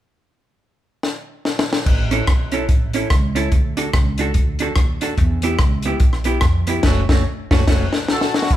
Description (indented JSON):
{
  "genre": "ska",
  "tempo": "145 BPM",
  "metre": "4/4",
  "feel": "swing 61% on 8ths",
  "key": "A mixolydian",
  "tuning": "A4 = 439 Hz",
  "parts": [
    { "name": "compact cocktail drum kit", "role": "drums", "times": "1.0-8.6 s", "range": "crash cymbal, hi-hat, kick drum, rim click, snare drum", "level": "-17 LUFS", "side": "equal", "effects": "none" },
    { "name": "upright bass", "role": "bass", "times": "1.9-8.6 s", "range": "F#1 to F2", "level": "-22 LUFS", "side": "equal", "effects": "none" },
    { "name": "vintage hollow-body jazz guitar", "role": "accompaniment", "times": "2.1-7.9 s", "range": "A3 to A4", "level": "-23 LUFS", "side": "right 3 dB", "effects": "none" },
    { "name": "warm horn section", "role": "melody", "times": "8.1-8.6 s", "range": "C#4 to A4", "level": "-21 LUFS", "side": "left 1 dB", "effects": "none" }
  ],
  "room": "light reverb",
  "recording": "band playing live in one room",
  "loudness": "-16 LUFS",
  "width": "side -13 dB against mid",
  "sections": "0.2-1.9 A section; 1.9-8.5 B section",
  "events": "drum fill 1.0-1.9, 6.8-8.5; band accent 6.8-8.5",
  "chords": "0.2 N.C.; 1.9 A; 3.5 D; 5.2 Em; 6.8 F#m"
}